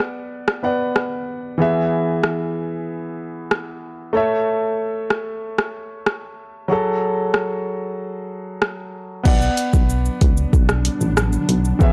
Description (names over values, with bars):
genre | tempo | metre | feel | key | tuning
dancehall | 94 BPM | 4/4 | straight | B dorian | A4 = 442 Hz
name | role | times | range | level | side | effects
warm concert grand piano | accompaniment | 0.0-11.9 s | E3 to F#5 | -24 LUFS | equal | none
afro-pop drum kit | drums | 0.0-11.9 s | crash cymbal, hi-hat, kick drum, rim click, shaker | -20 LUFS | equal | none
granular cloud pad | sustained chords | 10.1-11.9 s | F#3 to D4 | -27 LUFS | equal | built-in reverb, sidechain pumping
solid FM bass | bass | 9.3-11.9 s | A1 to E2 | -22 LUFS | equal | none
room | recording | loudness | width
little or no reverb | dry, gritty hardware recording | -21 LUFS | mono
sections
0.0-9.3 A section; 9.3-11.9 B section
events
kick muted 6.7-9.3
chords
0.0 Bm; 1.6 E; 4.1 A; 6.7 F#madd9; 9.3 Bm